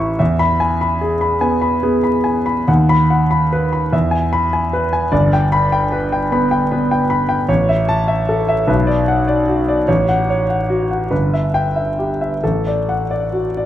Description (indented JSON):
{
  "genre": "classical, romantic character piece for solo piano",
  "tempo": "44-51 BPM (dotted quarters)",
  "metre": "6/8",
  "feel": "rubato",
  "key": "unclear",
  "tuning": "A4 = 440 Hz",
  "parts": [
    { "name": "warm concert grand piano", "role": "solo", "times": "0.0-13.7 s", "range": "G1 to C#6", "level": "-14 LUFS", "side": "equal", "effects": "none" }
  ],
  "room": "wet recital hall reverb, RT60 1.3 s",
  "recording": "dark, warm production, vinyl crackle",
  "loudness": "-14 LUFS",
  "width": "side -12 dB against mid",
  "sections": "0.0-13.7 A section",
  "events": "none",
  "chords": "0.2 E; 2.7 B/D#; 3.9 E; 5.1 G; 7.5 A; 8.7 Bm; 9.9 F#m/A; 11.1 Em/G; 12.4 D/A",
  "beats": "| 0.20 1.43 | 2.68 3.92 | 5.11 6.30 | 7.48 8.68 | 9.87 11.11 | 12.41"
}